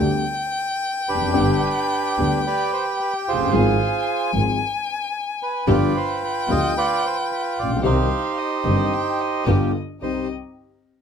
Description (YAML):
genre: tango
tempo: 111 BPM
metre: 4/4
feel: rubato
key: unclear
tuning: A4 = 440 Hz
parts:
  - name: dark violin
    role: second line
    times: 0.0-10.3 s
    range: Eb5 to Ab5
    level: -26 LUFS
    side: left 4 dB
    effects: none
  - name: dark concert grand piano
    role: accompaniment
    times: 0.0-10.3 s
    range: F1 to Ab4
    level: -23 LUFS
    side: left 3 dB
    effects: none
  - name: dark studio string section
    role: stabs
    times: 0.0-10.2 s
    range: B3 to Ab4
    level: -30 LUFS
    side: left 2 dB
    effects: none
  - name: clear double bass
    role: bass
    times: 0.0-10.2 s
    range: F1 to D2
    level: -24 LUFS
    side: right 1 dB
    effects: none
  - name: bandoneon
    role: melody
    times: 1.1-10.3 s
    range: D4 to Eb5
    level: -23 LUFS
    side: right 4 dB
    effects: none
room: little or no reverb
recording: close, detailed microphones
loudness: -19 LUFS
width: side -7 dB against mid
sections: 0.0-10.0 A section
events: none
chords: 0.0 G; 3.5 Fm/Ab; 5.7 G7; 7.8 Cm; 9.5 G7; 10.0 Cm